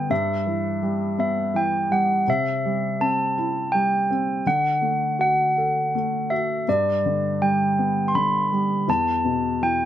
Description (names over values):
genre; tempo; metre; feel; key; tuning
children's music, lullaby; 82 BPM; 3/4; rubato; G major; A4 = 445 Hz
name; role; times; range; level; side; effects
handbells; melody; 0.0-9.9 s; D5 to C6; -22 LUFS; right 1 dB; none
felt-muted upright piano; accompaniment; 0.0-9.9 s; E2 to A4; -24 LUFS; left 1 dB; none
room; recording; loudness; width
little or no reverb; close, detailed microphones; -20 LUFS; side -11 dB against mid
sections
0.0-9.9 A section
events
none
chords
0.1 Em/G; 2.3 C; 4.4 D; 6.7 G; 8.9 Em